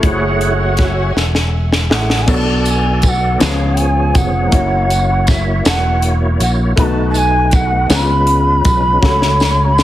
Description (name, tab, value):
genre	slow gospel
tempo	53 BPM (dotted quarters)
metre	6/8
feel	straight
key	F# minor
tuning	A4 = 440 Hz
part	warm baby grand piano	accompaniment	0.0-9.8 s	B2 to D5	-21 LUFS	left 2 dB	none
part	bright tonewheel organ	sustained chords	0.0-9.8 s	E#3 to F#5	-21 LUFS	right 2 dB	slow rotary speaker, chorus vibrato
part	warm studio string section	sustained chords	0.0-2.3 s	E5 to G#5	-30 LUFS	left 1 dB	none
part	fingered electric bass	bass	0.0-9.8 s	E1 to C#2	-16 LUFS	equal	none
part	crisp fusion drum kit	drums	0.0-9.8 s	crash cymbal, hi-hat, kick drum, snare drum	-16 LUFS	equal	none
part	breathy shakuhachi	melody	1.9-9.8 s	E5 to B5	-17 LUFS	right 1 dB	none
part	tambourine	percussion	2.7-9.8 s	none	-28 LUFS	right 6 dB	none
room	light reverb, small room ambience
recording	heavily compressed radio sound, multiband compression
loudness	-11 LUFS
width	side -13 dB against mid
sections	0.0-2.3 A section; 2.3-9.8 B section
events	tonewheel organ solo 0.0-2.3; drum fill 1.2-2.3, 9.0-9.8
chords	0.0 F#m9; 2.3 Bm7; 3.4 C#7; 4.5 F#7; 6.8 B7; 7.9 C#7; 9.0 F#m/C#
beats	| 0.04 1.16 | 2.28 3.41 | 4.53 5.66 | 6.78 7.90 | 9.03